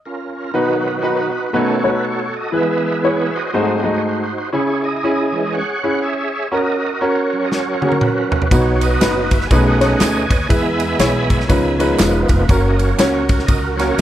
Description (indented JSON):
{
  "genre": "uptempo gospel",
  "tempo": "120 BPM",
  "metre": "4/4",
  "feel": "swing 61% on 8ths",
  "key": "B major",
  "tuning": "A4 = 440 Hz",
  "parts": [
    { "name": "overdriven tonewheel organ", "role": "sustained chords", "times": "0.1-14.0 s", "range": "D#3 to B5", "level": "-20 LUFS", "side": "right 2 dB", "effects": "slow rotary speaker, chorus vibrato" },
    { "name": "clear concert grand piano", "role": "accompaniment", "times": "0.5-14.0 s", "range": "G#2 to D#5", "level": "-18 LUFS", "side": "left 1 dB", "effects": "none" },
    { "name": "natural country drum kit", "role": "drums", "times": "7.5-14.0 s", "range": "kick drum, ride cymbal, snare drum, toms", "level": "-18 LUFS", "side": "equal", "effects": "none" },
    { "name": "upright bass", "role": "bass", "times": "8.5-14.0 s", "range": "E1 to E2", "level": "-19 LUFS", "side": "equal", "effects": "none" },
    { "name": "tambourine and handclaps", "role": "percussion", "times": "8.5-13.9 s", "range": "none", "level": "-30 LUFS", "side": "right 4 dB", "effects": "none" }
  ],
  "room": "light reverb",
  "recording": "dark, warm production",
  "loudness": "-14 LUFS",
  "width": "side -12 dB against mid",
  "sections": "0.5-14.0 A section",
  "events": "stop 0.0-0.5; tonewheel organ solo 0.5-14.0; drum fill 7.5-8.5",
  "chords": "0.0 Ebsus2 (rootless); 0.5 B; 1.5 B7; 2.5 E; 3.5 G#7b9; 4.5 C#m; 6.5 F#; 8.5 B; 9.5 B13; 10.5 E; 11.5 C#9; 12.5 F#"
}